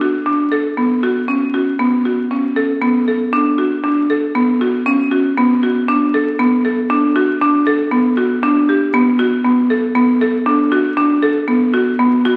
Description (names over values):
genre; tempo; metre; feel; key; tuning
contemporary instrumental, contemporary; 118 BPM; 7/4; straight; B minor; A4 = 440 Hz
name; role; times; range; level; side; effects
buzzing marimba with hard mallets; solo; 0.0-12.4 s; B3 to A4; -15 LUFS; equal; none
room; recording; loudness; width
wet recital hall reverb, RT60 1.4 s; very old 78 rpm record, vinyl crackle; -15 LUFS; mono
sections
0.0-12.4 A section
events
none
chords
none